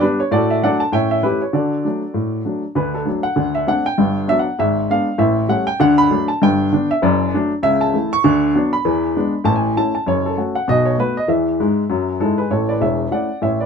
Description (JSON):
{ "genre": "jazz, stride piano", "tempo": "197 BPM", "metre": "4/4", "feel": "swing 59% on 8ths", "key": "D major, A major from 7.6 s", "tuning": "A4 = 440 Hz", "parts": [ { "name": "warm upright piano", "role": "solo", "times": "0.0-13.7 s", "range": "E1 to C#6", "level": "-15 LUFS", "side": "equal", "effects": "none" } ], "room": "moderate booth ambience, RT60 0.3 s", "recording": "minimal, uncompressed stereo recording", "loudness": "-15 LUFS", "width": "side -6 dB against mid", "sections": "0.0-2.8 A section; 2.8-12.5 B section; 12.5-13.7 A section", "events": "upright piano fill 11.6-12.5", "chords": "0.3 D/A; 0.9 A7; 1.5 D; 3.4 D5; 4.0 Gmaj7; 4.6 G#dim7; 5.2 A7; 5.8 D; 6.4 G; 7.0 D/F#; 7.6 A/C#; 8.2 Bm/D; 8.8 E7; 9.5 A; 10.1 F#m; 10.7 B5; 11.3 E; 12.5 A", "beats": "0.02 | 0.32 0.63 0.93 1.24 | 1.54 1.84 2.15 2.45 | 2.76 3.06 3.37 3.67 | 3.98 4.28 4.59 4.89 | 5.20 5.50 5.80 6.11 | 6.41 6.72 7.02 7.33 | 7.63 7.93 8.24 8.54 | 8.85 9.15 9.46 9.76 | 10.06 10.37 10.67 10.98 | 11.28 11.59 11.89 12.20 | 12.50 12.80 13.11 13.41" }